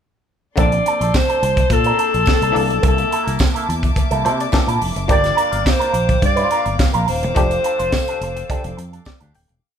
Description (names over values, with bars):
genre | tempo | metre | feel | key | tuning
disco | 106 BPM | 4/4 | straight | unclear | A4 = 440 Hz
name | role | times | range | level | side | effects
breathy alto saxophone | melody | 0.6-9.0 s | A4 to D5 | -19 LUFS | left 2 dB | none
electric guitar with an envelope filter | accompaniment | 0.6-9.5 s | Bb3 to C5 | -23 LUFS | right 4 dB | wah
muted clav | accompaniment | 0.6-9.6 s | D3 to G5 | -25 LUFS | left 4 dB | overdrive
warm studio string section | sustained chords | 0.6-9.6 s | Bb3 to D6 | -28 LUFS | left 2 dB | none
fingered electric bass | bass | 0.6-9.6 s | Eb1 to C3 | -23 LUFS | equal | none
tight funk drum kit | drums | 0.6-9.6 s | hi-hat, kick drum, snare drum | -19 LUFS | equal | none
tambourine | percussion | 1.1-9.2 s | none | -33 LUFS | right 5 dB | none
room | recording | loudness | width
light reverb | band playing live in one room | -15 LUFS | side -8 dB against mid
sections
0.6-9.6 verse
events
clav fill 4.0-5.1, 8.8-9.6; fade-out 7.4-9.6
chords
0.6 Bbmaj9; 2.5 C13; 5.1 Gm7; 7.4 F69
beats
| 0.57 1.14 1.70 2.27 | 2.83 3.39 3.96 4.53 | 5.09 5.66 6.22 6.79 | 7.36 7.92 8.49 9.06